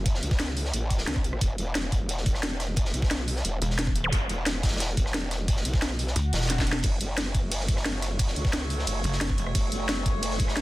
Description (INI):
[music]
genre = dark technical drum and bass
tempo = 177 BPM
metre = 4/4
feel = straight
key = F# minor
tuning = A4 = 440 Hz
[part]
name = growl bass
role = bass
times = 0.0-10.6 s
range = E1 to C#2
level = -30 LUFS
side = equal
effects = chorus, tube saturation, sidechain pumping
[part]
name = crunchy breakbeat drum kit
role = drums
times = 0.1-10.6 s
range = hi-hat, snare drum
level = -35 LUFS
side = equal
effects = high-pass filter on hats, high-pass filter on snare, high-pass filter on room
[part]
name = drum and bass drum kit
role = drums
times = 0.1-10.6 s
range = hi-hat, ride cymbal, rim click, snare drum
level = -30 LUFS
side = equal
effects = none
[part]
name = electronic kick drum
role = drums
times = 0.1-10.5 s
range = none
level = -26 LUFS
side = equal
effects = none
[part]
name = pulsing pluck wobble bass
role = bass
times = 3.6-4.1, 6.2-6.8, 9.0-9.5 s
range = E1 to D2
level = -27 LUFS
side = equal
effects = chorus
[part]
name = zap and swell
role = sound effects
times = 4.0-4.1, 6.2-6.8 s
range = none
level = -33 LUFS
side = equal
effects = none
[part]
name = metallic inharmonic drone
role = sustained chords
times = 7.5-10.6 s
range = A3 to C#5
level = -35 LUFS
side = right 1 dB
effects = chorus, built-in reverb, vintage 12-bit sampler grit, sidechain pumping
[sound]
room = little or no reverb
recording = dense, heavily limited modern master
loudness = -24 LUFS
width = side -18 dB against mid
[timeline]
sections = 0.0-10.6 A section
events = swell 6.2-6.8; drum fill 6.5-6.8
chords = 0.0 F#m; 1.4 E5; 6.8 F#m